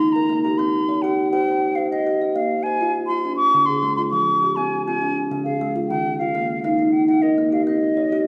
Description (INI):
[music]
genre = southern african traditional, mbira-style interlocking cycle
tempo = 135 BPM (dotted quarters)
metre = 12/8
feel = straight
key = unclear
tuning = A4 = 440 Hz
[part]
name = hollow concert flute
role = melody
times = 0.0-8.3 s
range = Eb5 to Db6+48c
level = -24 LUFS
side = equal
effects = none
[part]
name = kalimba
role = arpeggios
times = 0.0-8.3 s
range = Db3+43c to G5-43c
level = -22 LUFS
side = equal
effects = none
[sound]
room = wet recital hall reverb, RT60 1.6 s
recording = recorded in a church or concert hall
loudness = -20 LUFS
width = mono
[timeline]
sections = 0.0-8.3 A section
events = none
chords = 0.0 Eb; 0.6 C5; 2.4 Bb5; 3.2 Db; 4.1 Fm; 5.0 Db; 5.9 Eb; 7.7 Cm